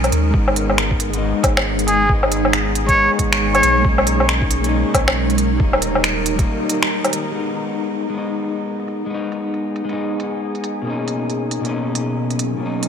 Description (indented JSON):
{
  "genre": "future garage",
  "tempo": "137 BPM",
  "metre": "4/4",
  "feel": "swing 61% on 16ths",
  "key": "G# minor",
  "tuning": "A4 = 435 Hz",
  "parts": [
    { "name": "ethereal airy pad", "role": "sustained chords", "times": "0.0-12.9 s", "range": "B2 to A#5", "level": "-23 LUFS", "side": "right 1 dB", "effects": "ensemble chorus, built-in reverb, phaser, vintage 12-bit sampler grit, sidechain pumping" },
    { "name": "warm sub bass", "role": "bass", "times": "0.0-6.5 s", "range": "D#1 to D#2", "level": "-22 LUFS", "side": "equal", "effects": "sidechain pumping" },
    { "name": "organic electronic drum kit", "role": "drums", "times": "0.0-12.9 s", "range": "crash cymbal, finger snaps, hi-hat, woodblock", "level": "-20 LUFS", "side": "equal", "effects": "low-pass filter on perc, low-pass filter on hats, low-pass filter on snare, low-pass filter on cymbals, low-pass filter on room" },
    { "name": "electric guitar at the edge of break-up", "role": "accompaniment", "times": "0.3-12.9 s", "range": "B2 to D#4", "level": "-24 LUFS", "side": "left 2 dB", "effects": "vintage 12-bit sampler grit, sidechain pumping, tape echo" },
    { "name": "electronic kick drum", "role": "drums", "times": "0.3-6.5 s", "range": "none", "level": "-19 LUFS", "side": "equal", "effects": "none" },
    { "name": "trumpet with straight mute", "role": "melody", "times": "1.9-3.8 s", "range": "G#4 to C#5", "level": "-20 LUFS", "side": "equal", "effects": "digital delay" }
  ],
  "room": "light reverb, digital ambience",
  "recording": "none",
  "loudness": "-16 LUFS",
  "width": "side -7 dB against mid",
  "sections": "0.0-7.3 A section; 7.3-12.9 B section",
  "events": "break 6.5-7.3; filter sweep on ambient pad 7.3-12.9",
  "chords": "0.3 G#m; 3.8 Bmaj7; 5.6 D#; 7.3 G#m; 10.9 Bmaj7",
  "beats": "| 0.34 0.78 1.22 1.66 | 2.09 2.53 2.97 3.41 | 3.85 4.28 4.72 5.16 | 5.60 6.04 6.47 6.91 | 7.35 7.79 8.23 8.66 | 9.10 9.54 9.98 10.41 | 10.85 11.29 11.73 12.17 | 12.61"
}